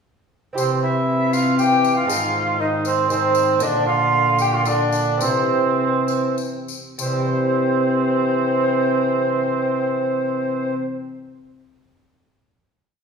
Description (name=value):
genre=classical, renaissance-style consort dance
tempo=95-120 BPM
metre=3/4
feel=straight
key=C mixolydian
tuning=A4 = 440 Hz
part: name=lute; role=accompaniment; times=0.5-11.0 s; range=Ab2 to C5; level=-28 LUFS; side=right 2 dB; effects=none
part: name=breathy tenor recorder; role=melody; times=0.6-10.7 s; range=C5 to G5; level=-22 LUFS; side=left 2 dB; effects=none
part: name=warm cor anglais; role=second line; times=0.6-10.7 s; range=C4 to G4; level=-23 LUFS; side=right 6 dB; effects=none
part: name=clear trombone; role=accompaniment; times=0.6-10.7 s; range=D3 to E3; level=-27 LUFS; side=left 1 dB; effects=none
part: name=rich cello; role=bass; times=0.6-10.7 s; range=Ab2 to C3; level=-24 LUFS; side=left 1 dB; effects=none
part: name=tambourine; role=percussion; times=0.6-7.3 s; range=none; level=-32 LUFS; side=left 6 dB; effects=none
room=wet recital hall reverb, RT60 1.4 s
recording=recorded in a church or concert hall, small room reverb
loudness=-17 LUFS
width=side -6 dB against mid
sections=0.6-7.0 A section; 7.0-10.8 final chord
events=slowing down 2.9-7.0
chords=0.6 C; 2.1 Ab; 3.6 Bb; 5.2 C